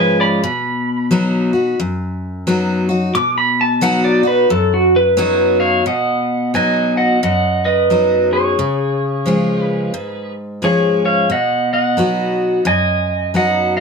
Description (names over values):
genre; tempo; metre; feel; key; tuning
country; 88 BPM; 4/4; swing 61% on 8ths; B lydian; A4 = 436 Hz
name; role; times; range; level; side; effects
pedal steel guitar; melody; 0.0-13.8 s; F#4 to D6; -15 LUFS; right 1 dB; none
picked steel-string acoustic guitar; accompaniment; 0.0-13.8 s; F#2 to F#4; -17 LUFS; left 2 dB; none
room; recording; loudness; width
light reverb; close, detailed microphones; -13 LUFS; side -5 dB against mid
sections
0.0-5.9 A section; 5.9-13.8 B section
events
pedal steel guitar solo 0.0-5.9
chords
0.4 B; 8.6 C#; 11.3 B